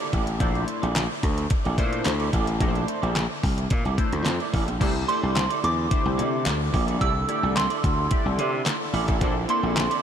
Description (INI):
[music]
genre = early-eighties boogie funk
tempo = 109 BPM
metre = 4/4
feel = straight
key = C mixolydian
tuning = A4 = 440 Hz
[part]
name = electric guitar through a small old amp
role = riff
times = 0.0-10.0 s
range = E4 to D5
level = -32 LUFS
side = right 5 dB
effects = ensemble chorus
[part]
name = detuned 8-bit digital drum machine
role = drums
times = 0.0-10.0 s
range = crash cymbal, handclaps, hi-hat, kick drum, snare drum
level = -26 LUFS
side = equal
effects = overdrive
[part]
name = gritty slap bass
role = bass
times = 0.1-9.9 s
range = A1 to C3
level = -26 LUFS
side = equal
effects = overdrive
[part]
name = chorused polysynth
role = accompaniment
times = 0.4-9.8 s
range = A3 to D5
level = -31 LUFS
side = left 2 dB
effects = phaser
[part]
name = group handclap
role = percussion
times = 1.0-9.9 s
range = none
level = -38 LUFS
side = left 3 dB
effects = none
[part]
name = brassy analog pad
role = sustained chords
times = 4.8-10.0 s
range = D3 to A4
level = -34 LUFS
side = right 1 dB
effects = none
[part]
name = soft synth bell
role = melody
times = 5.1-10.0 s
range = C6 to E6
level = -27 LUFS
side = right 3 dB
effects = chorus, diffuse ambient delay
[sound]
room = moderate huge ambient reverb, RT60 6.7 s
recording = dreamy mix soaked in reverb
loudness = -21 LUFS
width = side -8 dB against mid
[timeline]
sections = 0.0-4.8 A section; 4.8-10.0 B section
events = none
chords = 0.4 Bbmaj9#11; 4.8 C69; 9.2 Bbmaj9#11